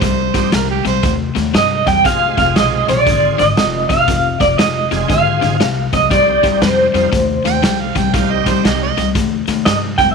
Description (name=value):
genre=electric blues shuffle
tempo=118 BPM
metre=4/4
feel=swing 64% on 8ths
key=C minor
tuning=A4 = 439 Hz
part: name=mellow harmonica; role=second line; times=0.0-1.1, 7.5-9.1 s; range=G4 to G5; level=-20 LUFS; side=right 16 dB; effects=overdrive
part: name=overdriven electric guitar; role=riff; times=0.0-10.1 s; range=F2 to A3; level=-19 LUFS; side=left 11 dB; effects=none
part: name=upright bass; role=bass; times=0.0-10.1 s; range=F1 to G2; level=-22 LUFS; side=right 1 dB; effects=none
part: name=raw garage drum kit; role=drums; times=0.0-10.1 s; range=hi-hat, kick drum, snare drum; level=-19 LUFS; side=right 1 dB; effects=none
part: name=bright tonewheel organ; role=accompaniment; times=0.3-8.9 s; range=G3 to Ab4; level=-23 LUFS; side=right 16 dB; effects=overdrive, chorus vibrato, slow rotary speaker
part: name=electric guitar through a small old amp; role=melody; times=1.6-10.1 s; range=C5 to G5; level=-14 LUFS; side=right 1 dB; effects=tremolo
room=small room ambience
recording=1960s-style stereo with parts hard left and right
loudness=-12 LUFS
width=side -5 dB against mid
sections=0.0-10.1 A section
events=none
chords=0.0 Cm; 2.1 Fm; 6.1 Cm